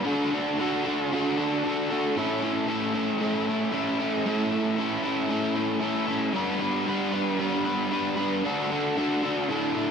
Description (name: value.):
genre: rock.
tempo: 115 BPM.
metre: 4/4.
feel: straight.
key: A mixolydian.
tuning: A4 = 440 Hz.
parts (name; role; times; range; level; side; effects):
crunchy overdriven guitar; solo; 0.0-9.9 s; A2 to B4; -24 LUFS; equal; wide subtle chorus, analog delay.
room: moderate scoring stage reverb, RT60 1.9 s.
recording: none.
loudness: -24 LUFS.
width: side -6 dB against mid.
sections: 0.0-9.9 A section.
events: none.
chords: 0.1 D; 2.2 A; 6.3 G; 8.4 D.